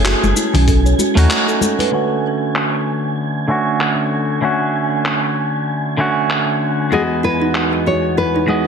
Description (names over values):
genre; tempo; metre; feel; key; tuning
sunset chillout; 96 BPM; 4/4; swing 58% on 16ths; unclear; A4 = 441 Hz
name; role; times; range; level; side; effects
clean electric guitar; accompaniment; 0.0-8.7 s; E2 to D#5; -18 LUFS; equal; auto-pan, low-pass filter, digital delay
kalimba; arpeggios; 0.0-1.9, 6.9-8.7 s; C#4 to D#5; -21 LUFS; right 2 dB; digital delay
warm sub bass; bass; 0.0-1.3 s; F#1 to D#2; -14 LUFS; left 1 dB; none
wind-like tuned noise texture; texture; 0.0-8.7 s; G#5; -26 LUFS; right 4 dB; built-in reverb
dusty soul sampler-style drum kit; drums; 0.1-7.7 s; handclaps, hi-hat, shaker; -21 LUFS; left 1 dB; low-pass filter on perc, low-pass filter on hats, low-pass filter on snare, low-pass filter on room
congas; percussion; 0.2-1.9 s; none; -23 LUFS; left 3 dB; none
electronic kick drum; drums; 0.7-0.8 s; none; -18 LUFS; left 1 dB; none
nylon-string guitar; melody; 6.9-8.7 s; G#4 to C#5; -19 LUFS; left 2 dB; digital delay
room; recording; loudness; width
moderate lush hall reverb, RT60 1.7 s; none; -14 LUFS; side -6 dB against mid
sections
0.0-1.9 A section; 1.9-8.7 B section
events
filter sweep on clean electric guitar 0.0-1.9, 1.9-8.7; break 1.3-1.9; band accent 1.3-1.6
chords
0.0 F#m9; 0.7 B9; 1.9 Dmaj7; 6.9 Emaj9